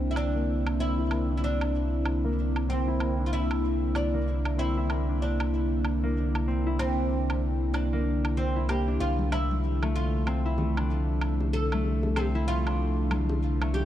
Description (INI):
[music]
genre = organic downtempo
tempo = 95 BPM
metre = 4/4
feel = swing 60% on 16ths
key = C mixolydian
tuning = A4 = 440 Hz
[part]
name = oud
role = melody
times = 0.0-13.8 s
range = C4 to A4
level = -33 LUFS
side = equal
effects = digital delay, shimmer reverb
[part]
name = airy breathy pad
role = sustained chords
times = 0.0-13.8 s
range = D3 to E4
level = -33 LUFS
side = right 2 dB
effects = chorus, shimmer reverb
[part]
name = concert harp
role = arpeggios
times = 0.0-13.8 s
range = A3 to E4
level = -32 LUFS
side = left 3 dB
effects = low-pass filter, tape echo, shimmer reverb
[part]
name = warm sub bass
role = bass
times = 0.0-13.8 s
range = C2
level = -28 LUFS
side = equal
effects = none
[part]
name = woodblock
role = drums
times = 0.2-13.7 s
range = none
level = -36 LUFS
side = right 2 dB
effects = small room ambience
[part]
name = congas and bongos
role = percussion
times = 9.2-13.8 s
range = none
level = -36 LUFS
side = left 2 dB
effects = none
[sound]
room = light reverb, small room ambience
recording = dark, warm production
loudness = -25 LUFS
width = side -12 dB against mid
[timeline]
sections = 0.0-13.8 A section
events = filter sweep on harp 0.0-13.8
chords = 0.0 C9; 9.0 Dm/C